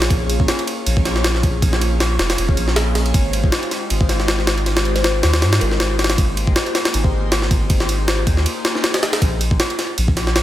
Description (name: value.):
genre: drum and bass, jungle.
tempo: 158 BPM.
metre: 4/4.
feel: swing 55% on 16ths.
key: unclear.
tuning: A4 = 436 Hz.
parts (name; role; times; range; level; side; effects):
kalimba; melody; 0.0-0.2, 5.0-5.8 s; Ab4 to C5; -30 LUFS; left 6 dB; none.
airy breathy pad; sustained chords; 0.0-9.2 s; Ab3 to Db5; -26 LUFS; left 1 dB; chorus, phaser.
soft dub sub bass; bass; 0.0-10.4 s; F1 to Ab2; -19 LUFS; equal; none.
jungle sampler-style drum kit; drums; 0.0-10.4 s; kick drum, ride cymbal, snare drum; -17 LUFS; equal; none.
room: digital ambience.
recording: none.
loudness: -15 LUFS.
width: side -13 dB against mid.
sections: 0.0-9.2 A section; 9.2-10.4 A section.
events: drop 0.0-9.2, 9.2-10.4.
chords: 0.0 Bbm7; 3.1 Fm9/Ab; 6.2 Abmaj9; 9.2 N.C..